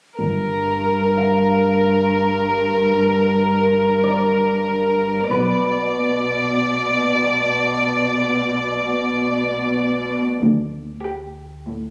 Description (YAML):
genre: cinematic, suspense film score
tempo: 94 BPM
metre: 4/4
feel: straight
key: unclear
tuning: A4 = 441 Hz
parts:
  - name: muted chamber violin section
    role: melody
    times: 0.2-11.5 s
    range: G4 to D5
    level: -21 LUFS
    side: equal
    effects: none
  - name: muted chamber cello section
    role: bass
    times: 0.2-11.9 s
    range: D2 to B2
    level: -24 LUFS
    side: equal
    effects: none
  - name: muted chamber double bass section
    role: bass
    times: 0.2-0.8, 5.3-5.9, 10.4-10.9 s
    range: G1 to D2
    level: -26 LUFS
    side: equal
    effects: none
  - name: pure sine sub bass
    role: drone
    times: 0.2-11.9 s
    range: G1 to D2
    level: -44 LUFS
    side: equal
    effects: none
  - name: concert harp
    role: texture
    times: 1.2-11.1 s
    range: B4 to A5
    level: -29 LUFS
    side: equal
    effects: none
room: moderate scoring stage reverb, RT60 1.6 s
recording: recorded on a phone in the room, club reverb, compression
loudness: -19 LUFS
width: mono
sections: 0.2-11.9 A section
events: none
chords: 0.2 Gm; 5.3 Bm; 10.4 Dsus4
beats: | 0.20 0.84 1.47 2.11 | 2.75 3.39 4.03 4.67 | 5.30 5.94 6.58 7.22 | 7.86 8.49 9.13 9.77 | 10.41 11.05 11.69